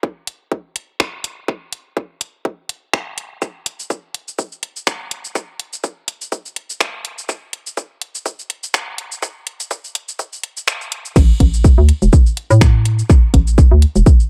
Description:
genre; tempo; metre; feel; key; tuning
minimal techno; 124 BPM; 4/4; swing 56% on 16ths; unclear; A4 = 440 Hz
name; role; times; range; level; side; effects
electronic kick drum; drums; 0.0-14.2 s; none; -14 LUFS; equal; high-pass filter on kick
booming analog drum machine; drums; 0.3-14.3 s; cabasa, crash cymbal, finger snaps, hi-hat; -24 LUFS; equal; analog delay
hollow knocking FM bass; bass; 11.2-14.0 s; E1 to A2; -14 LUFS; equal; sidechain pumping
room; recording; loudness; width
little or no reverb; echo-heavy mix, high-pass filter; -17 LUFS; mono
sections
0.0-11.2 A section; 11.2-14.3 B section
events
build-up 0.0-11.2; drop 11.2-14.3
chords
none

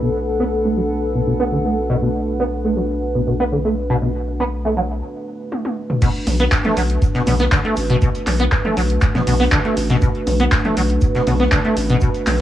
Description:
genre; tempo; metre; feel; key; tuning
acid house; 120 BPM; 4/4; straight; B minor; A4 = 440 Hz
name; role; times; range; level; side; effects
dark analog pad; sustained chords; 0.0-12.4 s; A3 to B4; -24 LUFS; right 2 dB; lush chorus, sidechain pumping, cassette tape
deep acid bass; riff; 0.0-12.1 s; B2 to B3; -20 LUFS; equal; tube saturation, ensemble chorus, cassette tape, tape echo
round analog bass; bass; 0.0-12.4 s; A1 to B1; -22 LUFS; left 1 dB; sidechain pumping
warbly tape-like pad; texture; 0.0-5.0 s; D4 to B5; -26 LUFS; left 1 dB; chorus, built-in reverb, sidechain pumping, cassette tape
punchy analog drum machine; drums; 5.5-12.4 s; crash cymbal, handclaps, hi-hat, toms; -22 LUFS; equal; overdrive, low-pass filter on hats, studio ambience, cassette tape, low-pass filter on snare, low-pass filter on toms, low-pass filter on cymbals
electronic kick drum; drums; 6.0-12.1 s; none; -19 LUFS; equal; studio ambience, cassette tape
modern studio drum kit; drums; 6.0-12.4 s; hi-hat, shaker, snare drum; -35 LUFS; right 1 dB; none
room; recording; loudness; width
light reverb; home recording on cassette; -16 LUFS; side -12 dB against mid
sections
0.0-6.0 A section; 6.0-12.4 B section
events
break 5.0-6.0; drum fill 5.5-6.0; drop 6.0-12.4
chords
0.0 Bm7

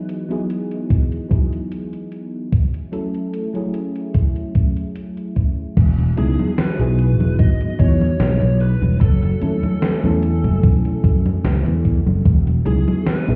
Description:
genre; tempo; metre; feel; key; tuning
vaporwave; 74 BPM; 4/4; swing 53% on 16ths; E major; A4 = 440 Hz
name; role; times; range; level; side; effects
mellow FM electric piano; accompaniment; 0.0-13.4 s; F#3 to A4; -27 LUFS; equal; analog chorus, analog delay
warbly tape-like pad; sustained chords; 0.0-13.4 s; E3 to G#5; -35 LUFS; equal; chorus, built-in reverb
gated 80s digital drum machine; drums; 0.1-13.4 s; congas, crash cymbal, hi-hat, snare drum; -25 LUFS; equal; gated reverb, gated reverb snare
electronic kick drum; drums; 0.9-12.4 s; none; -18 LUFS; equal; none
sustaining fretless electric bass; bass; 5.8-13.4 s; E1 to F#2; -19 LUFS; equal; none
biting lead guitar; melody; 6.2-13.4 s; G#4 to D#5; -32 LUFS; equal; overdrive, tape echo
room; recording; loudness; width
little or no reverb; heard muffled through a wall, stone room reverb, EQ; -18 LUFS; mono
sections
0.0-5.8 A section; 5.8-13.4 B section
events
none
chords
0.0 Emaj9; 2.5 F#m9; 5.8 Emaj9; 9.0 F#m9; 12.3 Emaj9

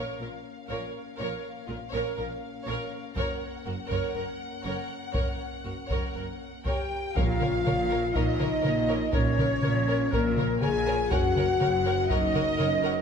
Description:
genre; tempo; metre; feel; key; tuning
cinematic, epic orchestral film score; 122 BPM; 4/4; straight; Bb minor; A4 = 442 Hz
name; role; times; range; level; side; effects
warm symphonic violin section; melody; 0.0-13.0 s; Bb4 to Ab5; -38 LUFS; left 3 dB; none
warm symphonic violin section; second line; 0.0-12.9 s; F4 to Gb5; -37 LUFS; left 2 dB; none
rich symphonic viola section; accompaniment; 0.0-12.9 s; Bb4; -36 LUFS; right 2 dB; none
dark French horn section; sustained chords; 0.0-13.0 s; Bb3 to Ab4; -31 LUFS; left 4 dB; none
clear symphonic cello section; bass; 0.0-13.0 s; Gb2 to Bb2; -34 LUFS; right 2 dB; none
clear symphonic double bass section; bass; 0.0-13.0 s; Gb1 to Bb1; -35 LUFS; right 3 dB; none
solo taiko drums; drums; 3.2-12.8 s; none; -31 LUFS; equal; none
silver concert flute; second line; 6.7-13.0 s; Bb4 to Ab5; -34 LUFS; left 2 dB; none
dark trumpet section; stabs; 6.7-13.0 s; Bb4 to Ab5; -32 LUFS; right 4 dB; none
timpani; percussion; 7.2-7.9 s; Bb2; -37 LUFS; right 1 dB; none
room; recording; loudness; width
moderate scoring stage reverb, RT60 1.9 s; none; -25 LUFS; side -7 dB against mid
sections
0.0-7.2 A section; 7.2-13.0 B section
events
none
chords
0.0 Bbm; 3.2 Gb; 7.2 Bbm; 11.1 Gb

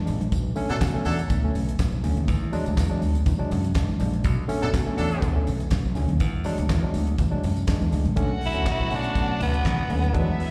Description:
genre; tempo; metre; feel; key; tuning
disco; 122 BPM; 4/4; straight; B dorian; A4 = 440 Hz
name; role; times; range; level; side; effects
barky tine electric piano; accompaniment; 0.0-10.5 s; B2 to D4; -31 LUFS; equal; plate reverb, slapback echo
modern bright fingered electric bass; bass; 0.1-10.4 s; A#1 to B2; -27 LUFS; equal; none
damped 70s drum kit; drums; 0.1-10.5 s; handclaps, hi-hat, kick drum, snare drum; -29 LUFS; equal; none
congas; percussion; 0.1-10.3 s; none; -35 LUFS; equal; slapback echo
tambourine; percussion; 0.1-8.1 s; none; -50 LUFS; equal; slapback echo
warm horn section; stabs; 0.7-1.2, 4.6-5.3 s; F#3 to A4; -32 LUFS; equal; plate reverb, slapback echo
warm studio violin section; second line; 8.2-10.5 s; E4 to F#5; -36 LUFS; equal; plate reverb, slapback echo, analog delay
raspy tenor saxophone; melody; 8.5-10.5 s; B3 to E4; -30 LUFS; equal; plate reverb, slapback echo, analog delay
room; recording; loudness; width
light reverb; live gig heard through the venue's PA, recital hall reverb; -24 LUFS; mono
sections
0.0-8.2 A section; 8.2-10.5 B section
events
tenor saxophone solo 8.2-10.5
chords
0.3 Bm7; 2.3 E9; 4.2 Bm7; 6.2 E9; 8.2 Bm7

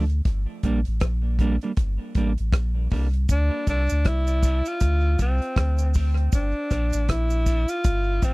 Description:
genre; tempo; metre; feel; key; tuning
dub reggae; 79 BPM; 4/4; swing 59% on 16ths; unclear; A4 = 439 Hz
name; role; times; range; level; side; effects
clean electric guitar; accompaniment; 0.0-8.3 s; F3 to D4; -30 LUFS; right 4 dB; high-pass filter, tape echo
warm sub bass; bass; 0.0-8.3 s; G1 to D2; -22 LUFS; equal; tube saturation
damped 70s drum kit; drums; 0.1-8.3 s; hi-hat, kick drum, rim click; -22 LUFS; equal; none
breathy tenor saxophone; melody; 3.3-8.3 s; C4 to F4; -27 LUFS; equal; tape echo
cabasa; percussion; 3.3-8.3 s; none; -40 LUFS; right 8 dB; high-pass filter on perc
room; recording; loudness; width
little or no reverb; dry, close 1970s-style studio recording; -20 LUFS; side -23 dB against mid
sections
0.0-8.3 A section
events
break 0.0-3.3; filter sweep 0.3-8.3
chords
0.3 Gm; 3.3 Dm; 6.3 Gm

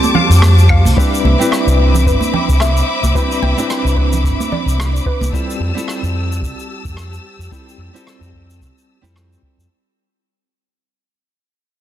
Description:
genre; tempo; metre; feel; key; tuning
sunset chillout; 110 BPM; 4/4; swing 56% on 16ths; C major; A4 = 442 Hz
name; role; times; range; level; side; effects
nylon-string guitar; accompaniment; 0.0-9.7 s; G3 to B4; -20 LUFS; equal; auto-pan, vintage 12-bit sampler grit, digital delay
dark studio string section; sustained chords; 0.0-9.7 s; C4 to E6; -21 LUFS; left 2 dB; none
vintage brush drum kit; drums; 0.0-9.7 s; claves, hi-hat, rim click, shaker; -24 LUFS; equal; soft clipping on snare
congas; percussion; 0.0-5.3 s; none; -22 LUFS; right 6 dB; none
soft round pluck; arpeggios; 0.1-5.3 s; B4 to G5; -26 LUFS; left 2 dB; wide subtle chorus, vintage 12-bit sampler grit, digital delay
fingered electric bass; bass; 0.3-9.6 s; G1 to F2; -13 LUFS; equal; none
electronic kick drum; drums; 0.7-9.5 s; none; -18 LUFS; equal; none
room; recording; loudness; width
light reverb, small room ambience; dense, heavily limited modern master; -12 LUFS; side -12 dB against mid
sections
1.0-9.7 A section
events
fade-out 1.0-9.7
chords
0.0 Fmaj9; 1.0 Cmaj9; 5.3 Fmaj9

